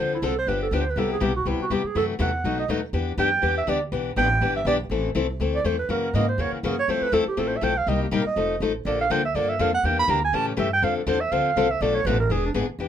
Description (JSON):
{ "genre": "acoustic string swing (jazz manouche)", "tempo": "244 BPM", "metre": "4/4", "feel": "swing 56% on 8ths", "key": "E minor, A minor from 4.9 s", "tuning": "A4 = 439 Hz", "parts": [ { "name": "breathy clarinet", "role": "melody", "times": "0.0-12.5 s", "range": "D4 to B5", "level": "-24 LUFS", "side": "right 4 dB", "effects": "none" }, { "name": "picked steel-string acoustic guitar", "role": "accompaniment", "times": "0.0-12.9 s", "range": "B2 to A4", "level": "-25 LUFS", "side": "left 6 dB", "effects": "none" }, { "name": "upright bass", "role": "bass", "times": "0.0-12.9 s", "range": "E1 to A2", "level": "-28 LUFS", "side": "right 1 dB", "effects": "none" } ], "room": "light reverb", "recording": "minimal, uncompressed stereo recording", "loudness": "-21 LUFS", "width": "side -9 dB against mid", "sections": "0.0-4.9 A section; 4.9-12.8 A section", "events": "clarinet solo 0.0-12.8", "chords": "0.0 Dm7; 0.5 G7; 1.0 Cmaj7; 2.0 F#m7b5; 2.4 B7; 2.9 Em7; 4.9 Am; 5.9 F#9; 6.9 Fmaj7; 7.9 Cm7; 8.4 F7; 8.9 Bbmaj7; 9.8 Em7b5; 10.3 A7; 10.8 Dm7; 11.8 Bm7b5; 12.3 E7", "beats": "0.23 0.48 0.72 | 0.97 1.22 1.46 1.71 | 1.95 2.20 2.44 2.69 | 2.94 3.19 3.43 3.68 | 3.92 4.17 4.42 4.66 | 4.91 5.16 5.40 5.65 | 5.90 6.14 6.39 6.64 | 6.88 7.13 7.38 7.62 | 7.87 8.12 8.36 8.61 | 8.86 9.10 9.35 9.59 | 9.84 10.09 10.33 10.58 | 10.82 11.07 11.32 11.56 | 11.81 12.05 12.30 12.55 | 12.79" }